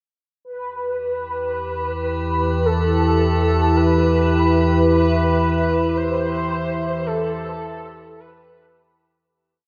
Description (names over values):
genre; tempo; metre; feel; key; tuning
dark ambient drone; free time; none; none; E minor; A4 = 440 Hz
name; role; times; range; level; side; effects
mellow horn-like synth lead; melody; 0.4-9.0 s; A4 to C5; -25 LUFS; equal; ensemble chorus, delay
deep dark ambient pad; sustained chords; 2.0-9.3 s; E4 to E5; -25 LUFS; equal; chorus, built-in reverb
deep rumbling drone; drone; 1.5-9.4 s; E2 to E3; -24 LUFS; equal; built-in reverb
metallic inharmonic drone; texture; 1.4-9.3 s; G4; -31 LUFS; equal; chorus, built-in reverb
room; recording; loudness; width
wet cathedral reverb, RT60 5.9 s; cassette tape; -19 LUFS; mono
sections
0.5-9.3 A section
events
fade-out 4.9-9.3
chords
0.5 E5